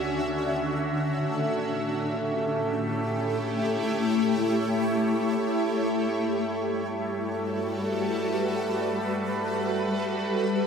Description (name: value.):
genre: ambient.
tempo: free time.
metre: none.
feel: none.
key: unclear.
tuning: A4 = 444 Hz.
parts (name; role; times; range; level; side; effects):
shimmering ambient pad; sustained chords; 0.0-10.7 s; D3 to E5; -25 LUFS; left 1 dB; chorus, built-in reverb, phaser, shimmer reverb.
dark chamber cello section; bass; 0.0-10.7 s; D2 to A2; -40 LUFS; equal; none.
pedal harmonium; drone; 1.3-10.6 s; A3 to A4; -32 LUFS; right 2 dB; none.
room: wet cathedral reverb, RT60 5.4 s.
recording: in a vast, echoing space.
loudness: -25 LUFS.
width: side -6 dB against mid.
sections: 0.0-10.5 A section.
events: fade-out on cello section 0.0-10.5.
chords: 0.0 Dmaj9; 1.3 A7; 5.9 Gmaj9.